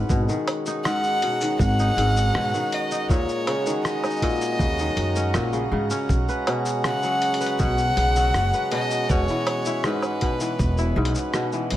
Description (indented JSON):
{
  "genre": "folktronica",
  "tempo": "80 BPM",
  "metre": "4/4",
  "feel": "straight",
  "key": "B major",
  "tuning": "A4 = 439 Hz",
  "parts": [
    { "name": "pedal harmonium", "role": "sustained chords", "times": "0.0-11.8 s", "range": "G#3 to A#5", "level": "-29 LUFS", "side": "right 3 dB", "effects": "none" },
    { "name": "kora", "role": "arpeggios", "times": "0.0-11.8 s", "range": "G#2 to B4", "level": "-27 LUFS", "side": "left 2 dB", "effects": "vintage 12-bit sampler grit, ping-pong delay" },
    { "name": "upright bass", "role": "bass", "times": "0.0-11.8 s", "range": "E1 to G#2", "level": "-23 LUFS", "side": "equal", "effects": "none" },
    { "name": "electronic kick drum", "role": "drums", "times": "0.1-10.7 s", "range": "none", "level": "-23 LUFS", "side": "equal", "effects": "studio ambience" },
    { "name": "lo-fi sampler-style drum kit", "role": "drums", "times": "0.1-11.8 s", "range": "hi-hat, rim click, shaker, woodblock", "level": "-30 LUFS", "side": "equal", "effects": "studio ambience" },
    { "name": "warm violin", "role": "melody", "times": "0.8-11.8 s", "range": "B4 to F#5", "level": "-26 LUFS", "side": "left 1 dB", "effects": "ping-pong delay" }
  ],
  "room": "light reverb",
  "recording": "none",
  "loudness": "-20 LUFS",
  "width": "side -13 dB against mid",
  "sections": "0.0-11.8 A section",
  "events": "none",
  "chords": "0.1 G#m7; 3.1 D#m7; 6.1 Bsus2; 9.1 Eadd9"
}